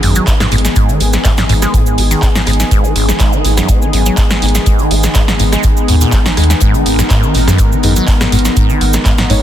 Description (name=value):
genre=acid house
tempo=123 BPM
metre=4/4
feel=straight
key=G# minor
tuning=A4 = 440 Hz
part: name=warm analog pad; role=sustained chords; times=0.0-9.4 s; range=D#3 to A#4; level=-20 LUFS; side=left 1 dB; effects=chorus, sidechain pumping
part: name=liquid acid bass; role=riff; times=0.0-9.3 s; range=G#1 to B3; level=-17 LUFS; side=equal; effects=phaser, sidechain pumping, dub echo
part: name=saturated sub bass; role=bass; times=0.0-9.4 s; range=G#1 to D#2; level=-13 LUFS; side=equal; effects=sidechain pumping
part: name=modern studio drum kit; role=drums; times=0.0-9.4 s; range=hi-hat, snare drum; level=-28 LUFS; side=left 5 dB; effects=sidechain pumping on hats, high-pass filter on hats, high-pass filter on snare, high-pass filter on room
part: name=punchy analog drum machine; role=drums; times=0.0-9.4 s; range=handclaps, hi-hat, rim click, snare drum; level=-18 LUFS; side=right 1 dB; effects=none
part: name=downlifter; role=sound effects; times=0.0-2.7 s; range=none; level=-31 LUFS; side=equal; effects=none
part: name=warbly tape-like pad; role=texture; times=0.0-9.4 s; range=B3 to G#5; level=-19 LUFS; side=left 1 dB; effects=chorus, built-in reverb, sidechain pumping
part: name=cabasa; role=percussion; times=0.2-9.3 s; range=none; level=-24 LUFS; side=right 5 dB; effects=none
part: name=electronic kick drum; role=drums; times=0.3-9.2 s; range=none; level=-13 LUFS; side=equal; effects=none
part: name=deep mellow chord stab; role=stabs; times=7.8-9.4 s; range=G#3 to C#5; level=-20 LUFS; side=left 1 dB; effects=chorus, phaser, dub echo
room=digital ambience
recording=dense, heavily limited modern master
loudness=-9 LUFS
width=side -11 dB against mid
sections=0.0-9.4 A section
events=none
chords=0.0 G#m